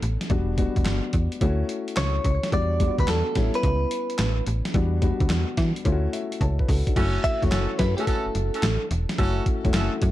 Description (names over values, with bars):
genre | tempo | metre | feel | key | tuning
R&B, new jack swing | 108 BPM | 4/4 | swing 67% on 16ths | unclear | A4 = 441 Hz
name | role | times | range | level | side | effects
dark baby grand piano | accompaniment | 0.0-10.1 s | G3 to A5 | -29 LUFS | left 5 dB | none
slap-like FM bass | bass | 0.0-10.1 s | E1 to E3 | -24 LUFS | equal | none
gated 80s digital drum machine | drums | 0.0-10.1 s | crash cymbal, handclaps, hi-hat, kick drum, snare drum | -25 LUFS | equal | gated reverb, gated reverb snare
direct-recorded clean electric guitar | melody | 2.0-8.9 s | A4 to E5 | -28 LUFS | right 1 dB | wide subtle chorus, ping-pong delay
clear horn section | stabs | 7.0-9.9 s | C#4 to A4 | -32 LUFS | right 4 dB | none
room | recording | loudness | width
little or no reverb | dark, warm production | -21 LUFS | side -14 dB against mid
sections
0.0-7.0 A section; 7.0-10.1 B section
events
grand piano fill 5.9-7.0; drum fill 6.4-7.0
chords
0.3 Em7; 1.4 Dmaj9; 2.5 Em7; 3.4 A7; 4.7 Em7; 5.9 Dmaj9; 7.0 F#m7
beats
| 0.30 0.85 1.41 1.97 | 2.52 3.08 3.63 4.19 | 4.74 5.30 5.86 6.41 | 6.97 7.52 8.08 8.63 | 9.19 9.74